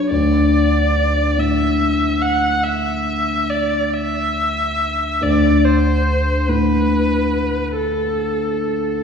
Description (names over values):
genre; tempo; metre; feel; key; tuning
classical, impressionist duo for viola and grand piano; 47 BPM (dotted quarters); 12/8; rubato; unclear; A4 = 440 Hz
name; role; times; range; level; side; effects
rich viola; melody; 0.0-9.0 s; A4 to F#5; -20 LUFS; right 1 dB; none
dark concert grand piano; accompaniment; 0.0-9.0 s; D2 to F#4; -17 LUFS; left 1 dB; none
room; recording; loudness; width
wet scoring stage reverb, RT60 1.4 s; heard from further back in the room, small room ambience; -15 LUFS; side -6 dB against mid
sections
0.0-9.0 A section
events
none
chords
0.1 Dsus2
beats
| 0.10 1.38 2.65 3.93 | 5.21 6.48 7.75